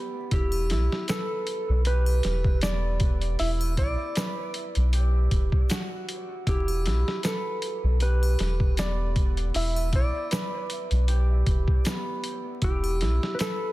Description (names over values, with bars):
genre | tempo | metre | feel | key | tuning
trip hop | 78 BPM | 4/4 | swing 55% on 16ths | E minor | A4 = 439 Hz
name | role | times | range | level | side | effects
concert harp | arpeggios | 0.0-13.7 s | B3 to B4 | -34 LUFS | right 3 dB | dub echo
clean lap steel guitar | melody | 0.3-13.7 s | G4 to E5 | -33 LUFS | equal | dub echo
soft dub sub bass | bass | 0.3-13.2 s | E1 to B1 | -24 LUFS | equal | tube saturation
boom bap sampler-style drum kit | drums | 0.3-13.6 s | hi-hat, kick drum, snare drum | -27 LUFS | equal | studio reverb
triangle and tube shaker | percussion | 0.5-13.6 s | none | -43 LUFS | right 1 dB | none
room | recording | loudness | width
little or no reverb | dense, heavily limited modern master, vinyl crackle | -23 LUFS | side -18 dB against mid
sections
0.0-13.7 A section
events
none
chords
0.0 Em7